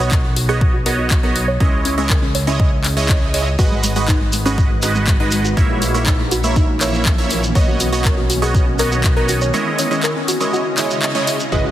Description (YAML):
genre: progressive house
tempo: 121 BPM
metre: 4/4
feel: straight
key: unclear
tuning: A4 = 440 Hz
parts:
  - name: soft round pluck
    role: arpeggios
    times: 0.0-11.7 s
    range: G#3 to D#5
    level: -24 LUFS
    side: left 1 dB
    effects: chorus, sidechain pumping, tape echo
  - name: supersaw stab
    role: stabs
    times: 0.0-11.7 s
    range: G#3 to E5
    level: -21 LUFS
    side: right 3 dB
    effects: phaser, sidechain pumping, tape echo
  - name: fat analog bass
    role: bass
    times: 0.0-11.7 s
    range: G#1 to C#2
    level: -21 LUFS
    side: equal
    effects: sidechain pumping
  - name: electronic kick drum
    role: drums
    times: 0.1-9.1 s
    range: none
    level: -16 LUFS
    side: equal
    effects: none
  - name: house drum kit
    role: drums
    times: 0.1-11.4 s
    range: handclaps, hi-hat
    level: -23 LUFS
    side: left 1 dB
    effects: overdrive, low-pass filter on snare, sidechain pumping on hats, low-pass filter on hats
  - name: shimmering ambient pad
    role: sustained chords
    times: 4.7-11.7 s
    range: C#3 to D#5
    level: -25 LUFS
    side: equal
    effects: chorus, built-in reverb, sidechain pumping
  - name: shekere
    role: percussion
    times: 3.6-11.5 s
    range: none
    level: -26 LUFS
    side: right 2 dB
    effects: none
  - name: impact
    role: sound effects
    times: 11.5-11.7 s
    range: none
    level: -20 LUFS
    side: left 1 dB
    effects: none
room: light reverb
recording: heavily compressed radio sound, multiband compression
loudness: -14 LUFS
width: side -12 dB against mid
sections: 0.0-11.5 A section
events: filter sweep on synth pluck 0.0-11.5; break 9.5-11.5; band accent 11.0; impact 11.5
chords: 0.0 Badd9; 1.6 C#madd9; 3.6 G#m7; 5.6 A#dim; 7.6 Badd9; 9.5 C#madd9